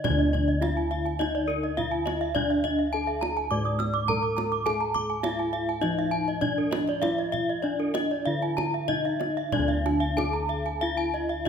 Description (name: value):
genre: Balinese gamelan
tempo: 93-104 BPM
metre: 4/4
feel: straight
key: D pelog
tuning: A4 = 438 Hz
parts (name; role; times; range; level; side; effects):
- gamelan-type bronze metallophone; melody; 0.0-11.5 s; D4 to D5; -29 LUFS; equal; none
- gamelan-type bronze metallophone; arpeggios; 0.0-11.5 s; Bb4-40c to E6+50c; -30 LUFS; left 5 dB; none
- gamelan-type bronze metallophone; arpeggios; 0.0-11.3 s; Bb4-40c to Eb6; -32 LUFS; right 6 dB; none
- gamelan-type bossed gongs; bass; 0.0-11.5 s; D2 to A4-45c; -30 LUFS; equal; none
- kendang; percussion; 0.0-11.5 s; none; -35 LUFS; right 4 dB; none
room: moderate scoring stage reverb, RT60 1.7 s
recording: minimal, uncompressed stereo recording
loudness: -24 LUFS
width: side -7 dB against mid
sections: 0.0-9.5 A section; 9.5-11.5 B section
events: none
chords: none